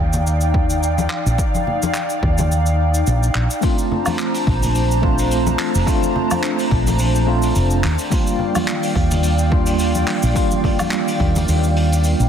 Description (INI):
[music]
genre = sunset chillout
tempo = 107 BPM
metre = 4/4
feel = swing 55% on 16ths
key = unclear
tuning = A4 = 440 Hz
[part]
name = airy breathy pad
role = sustained chords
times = 0.0-12.3 s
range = Eb3 to Bb5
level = -22 LUFS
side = equal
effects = chorus
[part]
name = woody fretless electric bass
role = bass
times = 0.0-12.3 s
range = F1 to Eb2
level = -17 LUFS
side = equal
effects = none
[part]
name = vintage brush drum kit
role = drums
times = 0.1-12.3 s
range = cabasa, handclaps, hi-hat, woodblock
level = -26 LUFS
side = equal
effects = none
[part]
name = congas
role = percussion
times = 0.1-11.5 s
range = none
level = -27 LUFS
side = left 3 dB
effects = none
[part]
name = electronic kick drum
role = drums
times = 0.5-11.3 s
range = none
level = -20 LUFS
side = equal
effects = overdrive
[part]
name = tine electric piano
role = accompaniment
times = 3.6-12.3 s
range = G3 to F4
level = -21 LUFS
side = moving between left 3 dB and right 4 dB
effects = slow stereo tremolo, auto-pan, tape echo
[sound]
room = light reverb, small room reverb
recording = dense, heavily limited modern master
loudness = -15 LUFS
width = side -8 dB against mid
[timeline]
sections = 0.0-12.3 A section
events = none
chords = 0.0 Ebmaj9; 3.6 Bbmaj9; 7.8 Ebmaj9